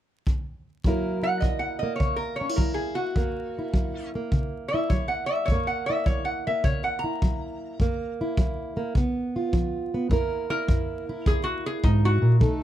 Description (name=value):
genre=acoustic country blues, solo or duo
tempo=104 BPM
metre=4/4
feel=swing 67% on 8ths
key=F# mixolydian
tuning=A4 = 440 Hz
part: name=kick drum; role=drums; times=0.3-12.6 s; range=none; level=-25 LUFS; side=equal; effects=none
part: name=fingerpicked plugged-in steel-string acoustic guitar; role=accompaniment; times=0.9-12.6 s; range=F#2 to A#4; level=-26 LUFS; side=right 1 dB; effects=none
part: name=lap resonator guitar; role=melody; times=1.2-12.4 s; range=D#4 to A#5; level=-28 LUFS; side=equal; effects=none
room=light reverb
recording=close, detailed microphones, vinyl crackle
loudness=-23 LUFS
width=side -12 dB against mid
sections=0.8-10.1 A section; 10.1-12.6 B section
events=resonator guitar played with a steel bar solo 10.1-12.6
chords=0.0 N.C.; 0.8 F#7; 9.0 C#7; 10.1 F#7